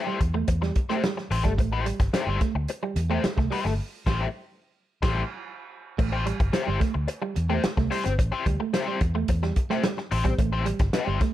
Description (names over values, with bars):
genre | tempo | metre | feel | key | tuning
funk | 109 BPM | 4/4 | straight | A minor | A4 = 440 Hz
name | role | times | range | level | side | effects
crunchy overdriven guitar | accompaniment | 0.0-11.2 s | A3 to C5 | -30 LUFS | left 6 dB | wah
electric guitar at the edge of break-up | riff | 0.1-11.3 s | G3 to A3 | -31 LUFS | right 8 dB | none
vintage muted fingered electric bass | bass | 0.2-11.2 s | G1 to E2 | -27 LUFS | equal | none
warm soul drum kit | drums | 0.2-11.3 s | crash cymbal, hi-hat, kick drum, snare drum | -27 LUFS | equal | none
room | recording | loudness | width
light reverb, studio ambience | none | -23 LUFS | side -13 dB against mid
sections
0.0-6.0 A section; 6.0-11.3 B section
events
band accent 3.8-6.0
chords
0.0 Am7